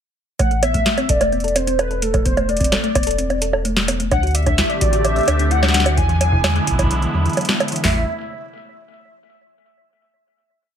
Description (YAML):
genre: IDM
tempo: 129 BPM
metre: 4/4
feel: straight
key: A dorian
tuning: A4 = 441 Hz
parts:
  - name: warbly nostalgic lead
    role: melody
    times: 0.4-8.1 s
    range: A4 to G#5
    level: -22 LUFS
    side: equal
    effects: tremolo, wide subtle chorus, tape echo
  - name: thumb-piano-like synth pluck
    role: arpeggios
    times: 0.4-8.1 s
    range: E3 to D5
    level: -26 LUFS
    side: left 4 dB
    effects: chorus, tape echo
  - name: warm sub bass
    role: bass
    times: 0.4-8.1 s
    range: E1 to E2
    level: -21 LUFS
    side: equal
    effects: tube saturation
  - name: booming analog drum machine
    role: drums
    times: 0.4-7.9 s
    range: hi-hat, kick drum, snare drum, toms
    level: -21 LUFS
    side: equal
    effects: none
  - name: booming analog drum machine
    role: drums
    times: 0.4-7.8 s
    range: bongos, hi-hat, snare drum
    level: -21 LUFS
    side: right 2 dB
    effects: none
  - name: phased analog pad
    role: sustained chords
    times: 4.1-8.1 s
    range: C3 to G4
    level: -24 LUFS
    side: right 2 dB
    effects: phaser, chorus, sidechain pumping
room: light reverb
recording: none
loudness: -15 LUFS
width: side -8 dB against mid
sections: 0.4-7.8 groove; 7.8-9.7 final chord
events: none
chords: 0.4 Am; 4.1 D7sus4; 6.0 E7; 7.8 N.C.